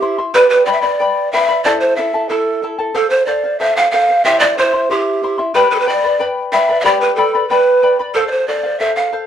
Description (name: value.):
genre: andean folk, Andean ensemble.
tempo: 92 BPM.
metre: 2/4.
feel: straight.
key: unclear.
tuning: A4 = 441 Hz.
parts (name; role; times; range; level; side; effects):
breathy mellow large pan pipes; melody; 0.0-9.1 s; G4 to F5; -13 LUFS; right 2 dB; none.
charango; accompaniment; 0.0-9.3 s; E4 to C6; -17 LUFS; left 5 dB; none.
room: wet studio reverb, RT60 0.5 s.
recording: dark, warm production.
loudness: -12 LUFS.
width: side -9 dB against mid.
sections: 0.0-3.0 A section; 3.0-9.3 A section.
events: none.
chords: 0.3 G; 1.6 Am; 3.0 F; 4.3 C; 5.6 G; 8.2 F.